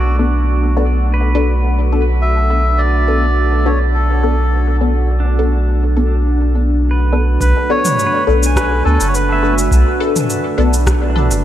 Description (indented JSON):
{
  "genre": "ambient dub",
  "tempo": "104 BPM",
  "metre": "4/4",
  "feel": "straight",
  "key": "B minor",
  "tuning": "A4 = 440 Hz",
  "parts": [
    { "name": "melodica", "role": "melody", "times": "0.0-9.5 s", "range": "F#4 to E5", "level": "-21 LUFS", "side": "equal", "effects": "dub echo" },
    { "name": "deep dark ambient pad", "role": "sustained chords", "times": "0.0-11.4 s", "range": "A3 to F#5", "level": "-21 LUFS", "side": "right 1 dB", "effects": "chorus, built-in reverb" },
    { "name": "pedal steel guitar", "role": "arpeggios", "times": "0.0-11.4 s", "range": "D4 to G#5", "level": "-26 LUFS", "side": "right 3 dB", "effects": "dub echo" },
    { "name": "soft dub sub bass", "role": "bass", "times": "0.0-11.4 s", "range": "F#1 to D2", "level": "-14 LUFS", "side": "equal", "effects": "none" },
    { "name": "filtered dub chord stab", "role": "stabs", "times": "0.2-11.3 s", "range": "B3 to A4", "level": "-22 LUFS", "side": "left 4 dB", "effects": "phaser, analog chorus, dub echo" },
    { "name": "electronic kick drum", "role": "drums", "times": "7.4-11.0 s", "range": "none", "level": "-18 LUFS", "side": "equal", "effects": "overdrive" },
    { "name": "organic electronic drum kit", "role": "drums", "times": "7.4-11.4 s", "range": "cabasa, rim click, toms", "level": "-21 LUFS", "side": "right 1 dB", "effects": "dub echo" }
  ],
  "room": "light reverb",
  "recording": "none",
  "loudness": "-12 LUFS",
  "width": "side -12 dB against mid",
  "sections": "0.0-7.4 A section; 7.4-11.4 B section",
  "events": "filter sweep on synth stab 0.0-7.4; filter sweep on pedal steel guitar 0.0-7.4",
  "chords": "0.0 Bm7"
}